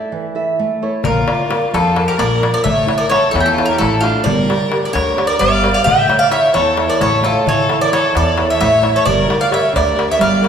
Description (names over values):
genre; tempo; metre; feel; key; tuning
greek folk, Greek bouzouki band; 262 BPM (eighths); 7/8; straight; unclear; A4 = 438 Hz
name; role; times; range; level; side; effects
Greek bouzouki; melody; 0.0-10.5 s; F4 to G5; -15 LUFS; right 1 dB; none
nylon-string guitar; accompaniment; 0.0-10.5 s; D3 to E5; -19 LUFS; right 2 dB; none
bright violin; second line; 1.0-10.5 s; D4 to E5; -21 LUFS; left 3 dB; none
upright bass; bass; 1.0-10.5 s; G1 to F2; -22 LUFS; left 1 dB; none
darbuka; percussion; 1.0-10.5 s; none; -22 LUFS; left 4 dB; none
room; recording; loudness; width
wet recital hall reverb, RT60 1.8 s; recorded in a church or concert hall; -12 LUFS; side -7 dB against mid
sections
0.0-1.0 A section; 1.0-10.5 B section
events
break 0.0-1.0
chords
0.0 A; 1.0 Bb; 2.7 A; 4.3 Gm; 5.9 A; 9.1 Gm